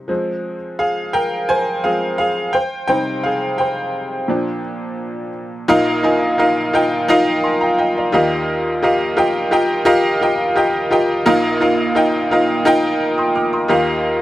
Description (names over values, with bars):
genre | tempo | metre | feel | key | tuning
pop | 86 BPM | 4/4 | straight | unclear | A4 = 444 Hz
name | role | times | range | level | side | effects
bright upright piano | solo | 0.0-14.2 s | Bb1 to F6 | -15 LUFS | equal | none
room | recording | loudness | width
light reverb | dry, close 1970s-style studio recording | -15 LUFS | side -15 dB against mid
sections
0.0-5.7 A section; 5.7-14.2 B section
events
upright piano solo 0.0-5.7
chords
0.1 Fm; 2.5 Cm; 4.3 Bb; 5.7 Bbsus4; 8.1 Ebadd9; 11.3 Bbsus4; 13.7 Ebadd9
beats
| 0.10 0.80 1.49 2.19 | 2.89 3.59 4.29 4.99 | 5.68 6.38 7.08 7.78 | 8.47 9.17 9.87 10.57 | 11.27 11.96 12.66 13.36 | 14.05